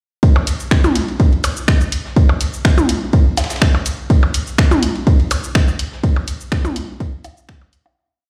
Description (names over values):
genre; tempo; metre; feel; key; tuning
techno; 124 BPM; 4/4; swing 53% on 16ths; none; none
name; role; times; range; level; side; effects
breakbeat sampler-style drum kit; drums; 0.2-7.9 s; hi-hat, ride cymbal, snare drum; -33 LUFS; equal; sidechain pumping on cymbals, high-pass filter on cymbals, high-pass filter on snare, sidechain pumping on hats, high-pass filter on hats
electronic kick drum; drums; 0.2-7.6 s; none; -15 LUFS; equal; overdrive
electronic percussion blips and toms; percussion; 0.4-7.9 s; none; -24 LUFS; equal; digital delay
punchy analog drum machine; drums; 0.5-7.8 s; finger snaps, hi-hat, shaker; -25 LUFS; equal; none
room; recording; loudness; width
light reverb; played on a big sound system in a bare room, stone room reverb; -16 LUFS; mono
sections
0.2-8.0 drop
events
drop 0.2-8.0; fade-out 5.4-8.0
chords
none